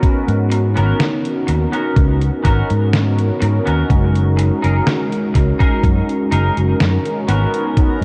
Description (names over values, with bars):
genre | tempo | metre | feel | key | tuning
vaporwave | 62 BPM | 4/4 | straight | unclear | A4 = 440 Hz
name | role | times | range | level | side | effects
mellow synth brass | accompaniment | 0.0-8.0 s | G#3 to A#5 | -22 LUFS | equal | subtle chorus, diffuse ambient delay
clean electric guitar | riff | 0.0-8.0 s | B3 to A#4 | -27 LUFS | equal | lush chorus, vintage 12-bit sampler grit, low-pass filter, diffuse ambient delay
fingered electric bass | bass | 0.0-8.0 s | F#1 to G#2 | -18 LUFS | equal | tube saturation
detuned 8-bit digital drum machine | drums | 0.0-8.0 s | hi-hat, snare drum | -26 LUFS | equal | small room ambience
electronic kick drum | drums | 0.0-8.0 s | none | -17 LUFS | equal | small room ambience
room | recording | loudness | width
moderate cathedral reverb, RT60 4.9 s | dreamy mix soaked in reverb, cassette tape | -16 LUFS | mono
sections
0.0-8.0 A section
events
none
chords
0.0 G#m11; 3.9 F#69; 7.3 G#m11